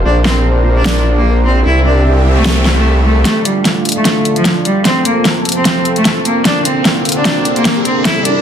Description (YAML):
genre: heavy wobble dubstep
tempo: 150 BPM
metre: 4/4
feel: swing 54% on 16ths, half-time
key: unclear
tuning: A4 = 440 Hz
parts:
  - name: supersaw pad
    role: sustained chords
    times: 0.0-8.4 s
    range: C3 to E5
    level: -18 LUFS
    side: right 1 dB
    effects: low-pass filter
  - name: formant-sweep wobble bass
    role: bass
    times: 0.0-3.2 s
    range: Bb1 to C2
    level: -11 LUFS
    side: equal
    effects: chorus, overdrive
  - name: bright cello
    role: melody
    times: 0.1-8.4 s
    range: F3 to E4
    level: -15 LUFS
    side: equal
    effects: low-pass filter, dub echo
  - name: dubstep drum kit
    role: drums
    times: 0.3-8.3 s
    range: hi-hat, snare drum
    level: -14 LUFS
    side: equal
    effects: overdrive, small room ambience
  - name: noise sweep and riser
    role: sound effects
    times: 2.0-8.4 s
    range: none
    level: -24 LUFS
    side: right 1 dB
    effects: none
room: light reverb, digital ambience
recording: dense, heavily limited modern master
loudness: -10 LUFS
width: side -8 dB against mid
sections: 0.0-3.3 A section; 3.3-8.4 B section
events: filter sweep on supersaw synth 0.0-3.3, 3.3-8.4; noise sweep 2.0-3.3; build-up 3.3-8.4; drum fill 3.3-8.4; riser 3.3-8.4; filter sweep on cello 3.3-8.4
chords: 0.1 Bbadd9; 1.7 C; 3.3 Dm; 4.9 F; 6.5 Bbadd9